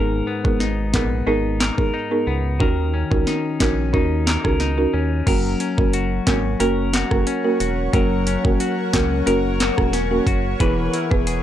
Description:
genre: dancehall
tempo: 90 BPM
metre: 4/4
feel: straight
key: unclear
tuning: A4 = 440 Hz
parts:
  - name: folk marimba with medium mallets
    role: accompaniment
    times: 0.0-11.3 s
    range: A#3 to B4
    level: -22 LUFS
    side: right 2 dB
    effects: sidechain pumping
  - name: clean electric guitar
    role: arpeggios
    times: 0.0-11.4 s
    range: G#2 to B4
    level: -25 LUFS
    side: left 4 dB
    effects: none
  - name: round analog bass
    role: bass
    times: 0.0-11.4 s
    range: E1 to D#2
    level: -24 LUFS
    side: equal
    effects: none
  - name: island pop drum kit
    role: drums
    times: 0.4-11.4 s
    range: crash cymbal, handclaps, hi-hat, kick drum, rim click, snare drum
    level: -21 LUFS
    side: equal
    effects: overdrive, vintage 12-bit sampler grit
  - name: granular cloud pad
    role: sustained chords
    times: 6.1-11.4 s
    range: G#4 to C#6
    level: -28 LUFS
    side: left 1 dB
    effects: built-in reverb, sidechain pumping
room: digital ambience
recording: dry, gritty hardware recording, transformer saturation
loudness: -17 LUFS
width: side -11 dB against mid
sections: 0.0-5.3 A section; 5.3-11.4 B section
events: none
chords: 0.0 G#madd9; 2.6 D#m7; 5.3 F#; 10.6 E

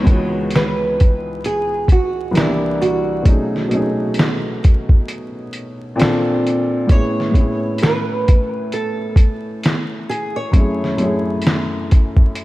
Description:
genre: lo-fi hip hop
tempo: 66 BPM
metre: 4/4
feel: swing 61% on 16ths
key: unclear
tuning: A4 = 439 Hz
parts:
  - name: nylon-string guitar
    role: melody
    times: 0.0-12.4 s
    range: E4 to C#5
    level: -23 LUFS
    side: right 2 dB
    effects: lush chorus, diffuse ambient delay
  - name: dark upright piano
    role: accompaniment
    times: 0.0-12.4 s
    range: C2 to A4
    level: -20 LUFS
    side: equal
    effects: none
  - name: lo-fi sampler-style drum kit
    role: drums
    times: 0.1-12.4 s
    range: hi-hat, kick drum, snare drum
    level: -14 LUFS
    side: equal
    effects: overdrive
room: light reverb, digital ambience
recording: vinyl crackle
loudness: -15 LUFS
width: side -17 dB against mid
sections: 0.0-12.4 A section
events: none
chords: 0.0 C#m9; 2.3 C9; 3.3 B13; 6.0 A#maj9; 6.9 Amaj9; 10.5 F#m9

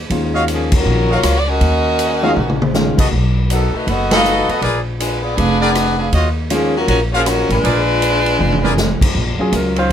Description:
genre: jazz, big band swing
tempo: 159 BPM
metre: 4/4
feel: swing 64% on 8ths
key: Eb minor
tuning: A4 = 442 Hz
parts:
  - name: upright bass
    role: bass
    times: 0.0-9.9 s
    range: F1 to Eb2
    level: -18 LUFS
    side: equal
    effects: none
  - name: warm grand piano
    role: accompaniment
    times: 0.1-3.0, 6.5-6.7, 9.4-9.9 s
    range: Eb3 to C5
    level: -19 LUFS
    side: left 1 dB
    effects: none
  - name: swinging big-band drum kit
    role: drums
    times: 0.1-9.9 s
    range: crash cymbal, hi-hat, kick drum, ride cymbal, rim click, snare drum, toms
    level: -20 LUFS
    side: equal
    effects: none
  - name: clear trumpet section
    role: stabs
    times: 0.3-8.7 s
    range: F4 to F5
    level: -19 LUFS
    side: equal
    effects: none
  - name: clear saxophone section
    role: melody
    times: 0.5-9.0 s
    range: F3 to Gb5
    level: -17 LUFS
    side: left 1 dB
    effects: none
  - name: clear saxophone section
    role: sustained chords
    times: 9.8-9.9 s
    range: Eb3 to F4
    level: -19 LUFS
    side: equal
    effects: none
room: light reverb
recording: close, detailed microphones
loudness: -13 LUFS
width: side -9 dB against mid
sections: 0.0-9.1 A section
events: band accent 0.7, 4.1; drum fill 2.4-2.7, 8.4-8.8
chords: 0.1 Ebm9; 3.1 B7; 4.6 Bb7b9; 6.1 Ebm9; 7.6 Bb7b9; 9.1 Ebm9

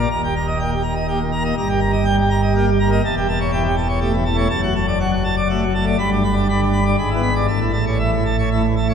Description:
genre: classical, organ toccata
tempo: 122 BPM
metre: 3/4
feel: straight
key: unclear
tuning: A4 = 444 Hz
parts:
  - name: pipe organ, plenum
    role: solo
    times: 0.0-8.9 s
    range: Eb1 to B5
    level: -16 LUFS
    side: equal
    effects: none
room: wet cathedral reverb, RT60 4.6 s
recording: recorded in a church or concert hall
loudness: -16 LUFS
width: side -7 dB against mid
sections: 0.0-8.9 A section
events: none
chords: 0.1 Eb; 1.6 Eb/G; 3.0 A7/E; 4.5 D/F#; 6.0 G; 7.0 E7/G#; 7.5 A

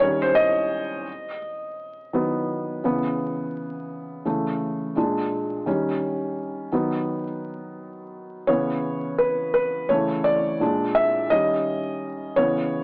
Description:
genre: hip hop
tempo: 85 BPM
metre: 4/4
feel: swing 64% on 16ths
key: unclear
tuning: A4 = 441 Hz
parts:
  - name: felt-muted upright piano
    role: solo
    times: 0.0-12.8 s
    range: A#2 to E5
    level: -22 LUFS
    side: equal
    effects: low-pass filter
room: moderate plate reverb, RT60 2.6 s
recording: worn, warbling old tape, cassette tape, vinyl crackle, warbly pitch drift, AM radio sound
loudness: -21 LUFS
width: side -35 dB against mid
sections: 0.0-12.8 A section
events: felt piano solo 0.0-12.8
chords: 0.0 D#7; 1.1 D#m; 2.8 C#m7; 4.2 A/C#; 5.0 A#7; 5.7 D#7; 6.7 D#m; 8.5 C#m7; 9.9 Aadd11/C#; 10.6 A#7; 11.3 D#7

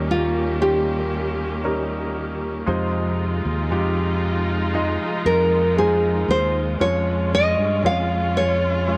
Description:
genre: pop ballad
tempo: 58 BPM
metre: 4/4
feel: straight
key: unclear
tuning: A4 = 440 Hz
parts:
  - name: nylon-string guitar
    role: melody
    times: 0.0-9.0 s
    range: F4 to F5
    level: -23 LUFS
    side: equal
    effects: none
  - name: clear grand piano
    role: accompaniment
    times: 0.0-9.0 s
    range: Bb2 to Eb5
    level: -29 LUFS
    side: equal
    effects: none
  - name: warm studio string section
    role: sustained chords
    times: 0.0-9.0 s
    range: Eb3 to G4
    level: -30 LUFS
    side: equal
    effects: none
  - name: fingered electric bass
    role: bass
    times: 0.0-9.0 s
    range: Eb2 to G2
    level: -26 LUFS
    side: equal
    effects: none
room: moderate plate reverb, RT60 3.6 s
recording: none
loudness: -21 LUFS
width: mono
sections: 0.0-9.0 A section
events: none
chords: 0.0 Eb7; 2.7 Fm7; 6.8 Db/F

